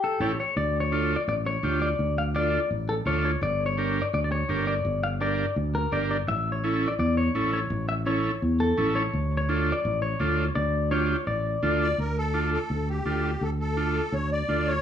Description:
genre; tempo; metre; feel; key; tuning
latin; 168 BPM; 4/4; straight; D harmonic minor; A4 = 440 Hz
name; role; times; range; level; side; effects
clean electric guitar; melody; 0.0-11.8 s; G4 to F5; -28 LUFS; left 3 dB; spring reverb, plate reverb
combo organ; accompaniment; 0.2-14.7 s; C#4 to Bb4; -27 LUFS; right 3 dB; none
fingered electric bass; bass; 0.2-14.8 s; G1 to E2; -27 LUFS; equal; none
musette accordion; second line; 11.8-14.8 s; G4 to D5; -29 LUFS; left 2 dB; none
room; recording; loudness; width
light reverb; small room ambience; -24 LUFS; side -9 dB against mid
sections
0.6-12.0 A section; 12.0-14.8 B section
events
band accent 0.0-0.6; accordion solo 12.0-14.8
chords
0.0 A7; 0.6 Dm; 3.4 Gm; 6.3 A; 9.1 Dm

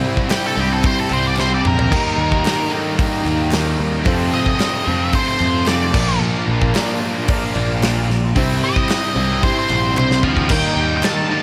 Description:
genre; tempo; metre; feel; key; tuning
classic rock; 112 BPM; 4/4; straight; unclear; A4 = 439 Hz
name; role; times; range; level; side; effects
dark grand piano; accompaniment; 0.0-11.4 s; Bb3 to D5; -30 LUFS; equal; none
overdriven tonewheel organ; sustained chords; 0.0-11.4 s; Eb4 to D5; -34 LUFS; equal; none
biting overdriven guitar; riff; 0.0-11.4 s; F2 to Eb4; -28 LUFS; equal; none
crunchy overdriven guitar; riff; 0.0-11.4 s; F2 to E4; -27 LUFS; equal; phaser
tight distorted guitar; riff; 0.0-11.4 s; F2 to E4; -28 LUFS; equal; distortion
big rock drum kit; drums; 0.2-11.2 s; crash cymbal, hi-hat, kick drum, snare drum, toms; -23 LUFS; equal; none
octave-fuzz lead guitar; melody; 0.3-11.4 s; G4 to A5; -23 LUFS; equal; distortion
group handclap; percussion; 0.3-11.2 s; none; -36 LUFS; equal; none
fuzz picked electric bass; bass; 0.6-11.0 s; Bb1 to F2; -23 LUFS; equal; overdrive
room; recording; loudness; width
small room ambience; none; -17 LUFS; mono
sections
0.0-10.5 A section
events
lead electric guitar solo 0.0-10.5; drum fill 1.4-1.9, 10.0-10.5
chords
0.0 C; 1.9 Eb; 4.1 F; 5.9 Bb; 8.4 C; 10.5 Eb

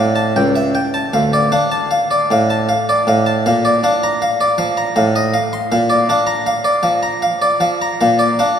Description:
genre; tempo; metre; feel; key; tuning
classical, baroque-style suite movement for harpsichord; 78 BPM; 3/4; rubato; unclear; A4 = 440 Hz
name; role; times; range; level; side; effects
harpsichord; solo; 0.0-8.6 s; C#2 to C6; -13 LUFS; equal; none
room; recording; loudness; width
wet cathedral reverb, RT60 5.8 s; none; -13 LUFS; side -8 dB against mid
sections
0.0-8.6 A section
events
none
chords
0.4 A7/C#; 1.1 Dm; 3.5 Bb; 5.0 F7/A; 5.7 Bb

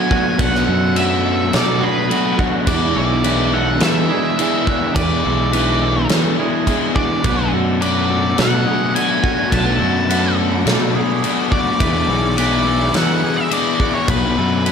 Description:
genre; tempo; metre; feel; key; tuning
rock, shoegaze and dream pop; 105 BPM; 4/4; straight; B dorian; A4 = 438 Hz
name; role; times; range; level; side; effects
octave-fuzz lead guitar; melody; 0.0-14.7 s; B4 to A5; -22 LUFS; equal; distortion, slapback echo
twangy electric guitar; arpeggios; 0.0-14.7 s; F#4 to B4; -28 LUFS; right 8 dB; lush chorus, slapback echo
crunchy overdriven guitar; riff; 0.0-14.7 s; B2 to G#4; -20 LUFS; left 8 dB; wide subtle chorus
direct-recorded clean electric guitar; riff; 0.0-14.7 s; E2 to F#4; -24 LUFS; right 12 dB; reverse reverb
big rock drum kit; drums; 0.1-14.7 s; crash cymbal, kick drum, snare drum; -20 LUFS; equal; none
fuzz fingered electric bass; bass; 0.4-14.7 s; B1 to E3; -20 LUFS; right 1 dB; overdrive
chorused pulse-width pad; sustained chords; 8.0-14.7 s; A3 to D6; -27 LUFS; right 3 dB; none
room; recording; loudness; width
light reverb, small room ambience; none; -14 LUFS; side -7 dB against mid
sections
0.0-14.7 A section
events
none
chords
0.0 Bm7; 2.7 E7; 7.2 Bm7; 11.8 E7; 14.1 Bm7

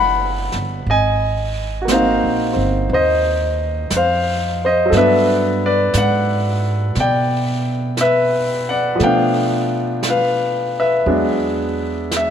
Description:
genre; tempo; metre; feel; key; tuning
jazz ballad; 59 BPM; 4/4; swing 68% on 8ths; unclear; A4 = 440 Hz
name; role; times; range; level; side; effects
clear concert grand piano; accompaniment; 0.0-12.3 s; F3 to B5; -16 LUFS; left 1 dB; none
upright bass; bass; 0.0-12.3 s; F#1 to B2; -22 LUFS; right 1 dB; none
jazz brush drum kit; drums; 0.5-12.3 s; brushed snare drum, hi-hat, snare drum; -28 LUFS; right 3 dB; none
room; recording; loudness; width
moderate concert hall reverb, RT60 2.4 s; none; -15 LUFS; side -8 dB against mid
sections
0.0-12.3 A section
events
none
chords
0.0 Bm7; 0.9 Ab9; 4.9 Gmaj9; 9.0 Bm7b5; 11.1 E7

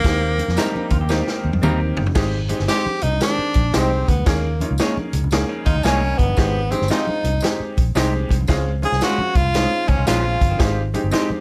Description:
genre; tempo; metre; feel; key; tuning
uptempo 1960s-style soul; 114 BPM; 4/4; swing 64% on 8ths; Ab major; A4 = 440 Hz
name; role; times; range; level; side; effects
bright tenor saxophone; melody; 0.0-10.9 s; Bb3 to Ab4; -25 LUFS; equal; none
vintage muted fingered electric bass; bass; 0.0-11.3 s; G1 to F2; -24 LUFS; equal; none
vintage drum kit; drums; 0.0-11.3 s; crash cymbal, hi-hat, kick drum, snare drum, toms; -24 LUFS; equal; none
tambourine; percussion; 0.0-11.3 s; none; -39 LUFS; equal; none
bright upright piano; accompaniment; 0.1-11.4 s; Eb3 to Ab5; -28 LUFS; equal; tube saturation
congas; percussion; 0.1-11.4 s; none; -35 LUFS; equal; none
electric guitar through a small old amp; riff; 0.6-2.0, 5.5-6.3, 9.9-10.8 s; Eb3 to Ab4; -33 LUFS; equal; none
semi-hollow electric guitar; stabs; 0.6-11.3 s; G3 to Db5; -28 LUFS; equal; none
room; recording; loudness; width
light reverb; lossy compression artefacts; -19 LUFS; mono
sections
0.0-2.2 A section; 2.2-11.4 B section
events
drum fill 1.1-2.2; tenor saxophone solo 2.2-11.4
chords
0.0 Eb6; 2.2 Abmaj7; 4.3 Eb7sus4; 6.4 Abmaj7; 8.5 Dbmaj7; 10.6 Abmaj7

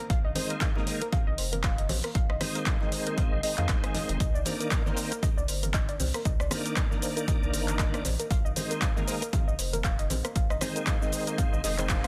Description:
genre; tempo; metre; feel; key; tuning
deep house; 117 BPM; 4/4; swing 57% on 16ths; unclear; A4 = 440 Hz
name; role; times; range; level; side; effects
warbly dusty pluck; arpeggios; 0.0-12.1 s; Bb4 to Ab5; -38 LUFS; equal; chorus, cassette tape, sidechain pumping, delay
round analog bass; bass; 0.1-12.1 s; F1 to F2; -34 LUFS; equal; sidechain pumping
cloth-damped thuddy drum kit; drums; 0.1-12.0 s; hi-hat, snare drum; -46 LUFS; equal; none
deep house drum kit; drums; 0.1-12.1 s; handclaps, hi-hat, rim click, shaker; -36 LUFS; equal; overdrive, small room ambience
electronic kick drum; drums; 0.1-12.0 s; none; -30 LUFS; equal; small room ambience
bright tonewheel organ; stabs; 0.4-12.1 s; Eb3 to D4; -36 LUFS; equal; chorus vibrato, slow rotary speaker, sidechain pumping, delay
congas and bongos; percussion; 0.4-11.9 s; none; -42 LUFS; equal; none
room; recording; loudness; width
light reverb, studio ambience; dense, heavily limited modern master; -28 LUFS; mono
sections
0.0-12.1 A section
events
band accent 11.9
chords
0.0 Bb9sus4; 4.2 Cm9; 8.0 Bb9sus4

